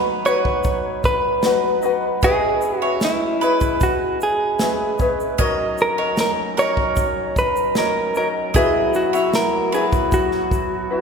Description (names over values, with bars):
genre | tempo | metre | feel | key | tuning
acoustic pop | 76 BPM | 4/4 | straight | unclear | A4 = 442 Hz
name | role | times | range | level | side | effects
ukulele | accompaniment | 0.0-11.0 s | E4 to F#5 | -23 LUFS | left 3 dB | none
pedal harmonium | sustained chords | 0.0-11.0 s | F#3 to A#5 | -27 LUFS | right 1 dB | none
direct-recorded clean electric guitar | melody | 0.3-11.0 s | E4 to C#5 | -20 LUFS | equal | none
bowl-back mandolin | arpeggios | 0.3-10.5 s | A#4 to D#5 | -27 LUFS | right 3 dB | none
natural country drum kit | drums | 0.3-10.7 s | kick drum, shaker, snare drum | -24 LUFS | equal | none
room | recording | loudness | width
wet church reverb, RT60 2.5 s | recorded in a church or concert hall | -17 LUFS | side -6 dB against mid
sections
0.0-11.0 A section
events
none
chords
0.0 B; 2.2 C#m7; 5.4 D#m7; 8.5 Esus2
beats
0.65 1.44 | 2.23 3.02 3.81 4.60 | 5.39 6.18 6.97 7.76 | 8.54 9.33 10.12 10.91